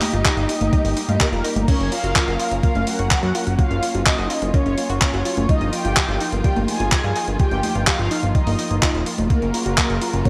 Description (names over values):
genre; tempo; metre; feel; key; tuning
italo disco; 126 BPM; 4/4; straight; unclear; A4 = 440 Hz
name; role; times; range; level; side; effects
mellow synth brass; melody; 0.0-10.3 s; Bb3 to Ab5; -27 LUFS; equal; chorus, digital delay
rich studio string section; sustained chords; 0.0-10.3 s; Db3 to Bb4; -31 LUFS; equal; none
analog pluck; arpeggios; 0.0-10.3 s; G3 to Bb4; -31 LUFS; equal; chorus, phaser, digital delay
dusty soul sampler-style drum kit; drums; 0.0-10.3 s; congas, crash cymbal, handclaps, hi-hat; -25 LUFS; equal; small room ambience, gated reverb
fat analog bass; bass; 0.1-10.2 s; Eb1 to G2; -26 LUFS; equal; none
electronic kick drum; drums; 0.3-10.3 s; none; -22 LUFS; equal; small room ambience
room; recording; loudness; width
moderate lush hall reverb, RT60 1.9 s; bright 1980s-style digital production; -20 LUFS; mono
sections
0.0-10.3 A section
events
none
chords
0.0 Ebadd9/G; 1.7 Gbmaj7; 5.5 Ebadd9/G; 9.3 Gbmaj7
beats
0.25 0.73 1.21 | 1.68 2.16 2.63 3.11 | 3.59 4.06 4.54 5.02 | 5.49 5.97 6.45 6.92 | 7.40 7.87 8.35 8.83 | 9.30 9.78 10.25